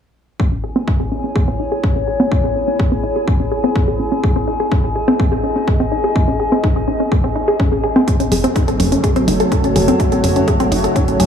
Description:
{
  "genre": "melodic techno",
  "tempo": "125 BPM",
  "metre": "4/4",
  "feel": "straight",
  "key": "C# harmonic minor",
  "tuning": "A4 = 445 Hz",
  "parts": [
    { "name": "wide unison pluck", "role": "arpeggios", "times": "0.4-11.2 s", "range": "B#3 to A4", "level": "-18 LUFS", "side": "left 1 dB", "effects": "sidechain pumping, tape echo" },
    { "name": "electronic kick drum", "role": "drums", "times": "0.4-11.1 s", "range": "none", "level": "-17 LUFS", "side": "equal", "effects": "none" },
    { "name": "warbly tape-like pad", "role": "texture", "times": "0.4-11.3 s", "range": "E4 to A5", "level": "-21 LUFS", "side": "left 1 dB", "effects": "chorus, built-in reverb, sidechain pumping" },
    { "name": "sweeping resonant pad", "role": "sustained chords", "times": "8.1-11.3 s", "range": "C#3 to F#4", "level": "-20 LUFS", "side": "right 2 dB", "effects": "chorus, sidechain pumping" },
    { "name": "electronic hi-hat", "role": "drums", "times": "8.1-11.3 s", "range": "none", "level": "-27 LUFS", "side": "right 3 dB", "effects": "none" },
    { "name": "plucky analog bass", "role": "bass", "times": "8.3-11.3 s", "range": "F#1", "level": "-17 LUFS", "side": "equal", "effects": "sidechain pumping" }
  ],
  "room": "moderate huge ambient reverb, RT60 4.6 s",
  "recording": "dreamy mix soaked in reverb, small room reverb",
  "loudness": "-14 LUFS",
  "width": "side -8 dB against mid",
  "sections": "0.4-11.3 A section",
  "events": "filter sweep on synth arpeggio sound 0.4-11.3",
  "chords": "0.4 C#m; 8.1 F#m"
}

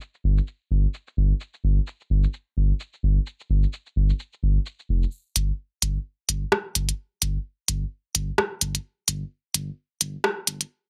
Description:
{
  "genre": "minimal techno",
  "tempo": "129 BPM",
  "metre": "4/4",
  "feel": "swing 57% on 16ths",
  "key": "unclear",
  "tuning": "A4 = 442 Hz",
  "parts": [
    { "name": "minimal click drum kit", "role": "drums", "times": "0.0-10.7 s", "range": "cabasa, hi-hat, rim click", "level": "-25 LUFS", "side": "equal", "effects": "low-pass filter on perc, low-pass filter on hats, low-pass filter on snare" },
    { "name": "saturated sub bass", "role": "bass", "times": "0.2-10.6 s", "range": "F1 to G1", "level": "-25 LUFS", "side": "equal", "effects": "none" }
  ],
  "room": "light reverb",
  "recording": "high-pass filter",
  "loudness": "-26 LUFS",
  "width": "mono",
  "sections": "0.0-5.1 A section; 5.1-10.9 B section",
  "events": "build-up 5.1-10.9",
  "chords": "none"
}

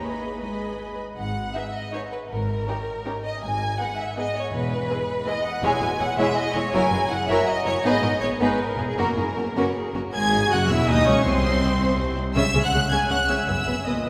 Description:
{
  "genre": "quick classical-period movement for string orchestra",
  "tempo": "161 BPM",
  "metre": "3/4",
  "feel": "straight",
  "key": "G# minor",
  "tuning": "A4 = 439 Hz",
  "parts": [
    { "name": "clear symphonic violin section", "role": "melody", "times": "0.0-14.1 s", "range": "G#4 to G#6", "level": "-28 LUFS", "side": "equal", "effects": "none" },
    { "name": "rich studio violin section", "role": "second line", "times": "0.0-14.1 s", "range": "E4 to B5", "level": "-30 LUFS", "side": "equal", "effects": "none" },
    { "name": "rich studio viola section", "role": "accompaniment", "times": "0.0-14.1 s", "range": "F#3 to B4", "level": "-30 LUFS", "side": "equal", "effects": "none" },
    { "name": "clear studio double bass section", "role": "bass", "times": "0.0-14.1 s", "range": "E1 to D#2", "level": "-32 LUFS", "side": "equal", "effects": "none" },
    { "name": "warm symphonic cello section", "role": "bass", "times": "0.0-14.1 s", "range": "C2 to A#3", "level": "-32 LUFS", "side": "equal", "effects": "none" }
  ],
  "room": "wet cathedral reverb, RT60 4.3 s",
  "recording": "recorded in a church or concert hall",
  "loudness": "-23 LUFS",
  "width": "mono",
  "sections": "0.0-1.2 A section; 1.2-10.1 A section; 10.1-14.1 B section",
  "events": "none",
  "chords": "0.0 G#m; 2.3 D#7(no3)/G#; 3.4 G#m; 4.5 E; 6.7 F#7; 7.8 G#m; 8.6 E; 9.0 F#; 10.1 Emaj13; 11.3 N.C.; 12.4 C#5; 13.5 B"
}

